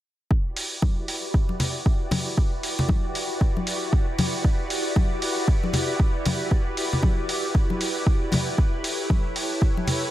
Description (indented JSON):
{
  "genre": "deep house",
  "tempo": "116 BPM",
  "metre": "4/4",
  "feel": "swing 60% on 16ths",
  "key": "E dorian",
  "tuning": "A4 = 440 Hz",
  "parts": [
    { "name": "soft string machine", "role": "sustained chords", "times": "0.6-10.1 s", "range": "E4 to D5", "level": "-29 LUFS", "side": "equal", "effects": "ensemble chorus, sidechain pumping" },
    { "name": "electronic kick drum", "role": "drums", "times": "0.3-9.7 s", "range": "none", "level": "-21 LUFS", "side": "equal", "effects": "none" },
    { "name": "electronic hi-hat", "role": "drums", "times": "0.6-10.0 s", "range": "none", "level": "-30 LUFS", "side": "right 1 dB", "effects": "none" },
    { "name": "congas", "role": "percussion", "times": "0.8-10.0 s", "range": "none", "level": "-26 LUFS", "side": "left 2 dB", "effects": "none" }
  ],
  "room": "light reverb",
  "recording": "none",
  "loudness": "-21 LUFS",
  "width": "side -14 dB against mid",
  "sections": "0.3-10.1 A section",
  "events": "none",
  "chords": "0.3 Em7; 8.6 A9"
}